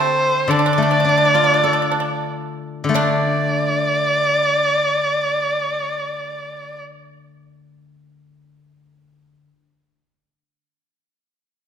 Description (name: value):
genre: chinese traditional, Chinese chamber ensemble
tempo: 42-58 BPM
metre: 2/4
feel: rubato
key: D yu mode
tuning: A4 = 440 Hz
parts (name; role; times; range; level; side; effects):
- warm erhu; melody; 0.0-6.8 s; C5 to D5; -18 LUFS; right 1 dB; none
- pipa; second line; 0.0-6.8 s; C4 to D4; -23 LUFS; right 5 dB; none
- steel-string zither; accompaniment; 0.0-9.5 s; D3 to A4; -22 LUFS; left 3 dB; none
room: wet scoring stage reverb, RT60 1.6 s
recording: minimal, uncompressed stereo recording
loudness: -16 LUFS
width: side -8 dB against mid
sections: 0.0-3.0 A section; 3.0-8.5 B section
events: slowing down 0.0-3.0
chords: none